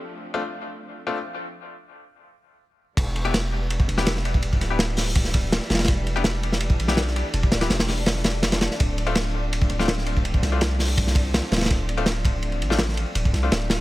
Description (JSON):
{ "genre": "drum and bass, jungle", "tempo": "165 BPM", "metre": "4/4", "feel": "straight", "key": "E phrygian", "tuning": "A4 = 439 Hz", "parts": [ { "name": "warm studio string section", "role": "sustained chords", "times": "0.0-13.8 s", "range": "E3 to D4", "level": "-33 LUFS", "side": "left 1 dB", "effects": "vintage 12-bit sampler grit" }, { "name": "bright grand piano", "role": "stabs", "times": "0.3-13.5 s", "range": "A3 to G4", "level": "-30 LUFS", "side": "left 4 dB", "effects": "dub echo" }, { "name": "long sustained 808-style bass", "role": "bass", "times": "3.0-13.8 s", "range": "D1 to C2", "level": "-25 LUFS", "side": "equal", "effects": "none" }, { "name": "crunchy breakbeat drum kit", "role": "drums", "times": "3.0-13.8 s", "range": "crash cymbal, hi-hat, kick drum, ride cymbal, snare drum", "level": "-22 LUFS", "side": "equal", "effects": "none" } ], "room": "studio reverb", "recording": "none", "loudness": "-20 LUFS", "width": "side -17 dB against mid", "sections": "0.0-3.0 A section; 3.0-13.8 B section", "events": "break 1.5-3.0; drop 3.0-13.8", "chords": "0.0 Dm7; 3.0 Em7; 8.8 Dm7" }